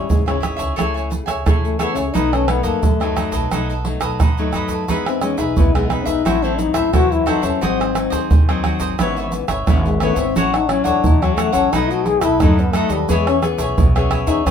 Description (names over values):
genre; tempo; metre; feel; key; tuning
samba and choro; 88 BPM; 4/4; straight; E major; A4 = 440 Hz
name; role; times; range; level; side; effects
mellow trombone; second line; 0.0-14.5 s; C#3 to G#4; -20 LUFS; left 6 dB; none
cavaquinho; accompaniment; 0.0-14.5 s; D#4 to G#5; -24 LUFS; equal; none
nylon-string guitar; accompaniment; 0.0-14.5 s; F#2 to G#4; -24 LUFS; left 5 dB; none
upright bass; bass; 0.0-14.5 s; G#1 to G#2; -23 LUFS; equal; none
egg shaker, surdo, pandeiro and tamborim; percussion; 0.1-14.5 s; none; -19 LUFS; right 3 dB; none
room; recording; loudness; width
moderate studio reverb, RT60 0.5 s; minimal, uncompressed stereo recording; -15 LUFS; side -8 dB against mid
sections
0.0-14.5 A section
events
trombone solo 0.0-14.5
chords
0.0 C#m; 0.8 Amaj7/C#; 2.2 B7; 4.9 Emaj7; 6.3 Am6; 7.6 G#7; 9.0 C#m7/G#; 10.4 A6; 11.7 B7; 13.1 E6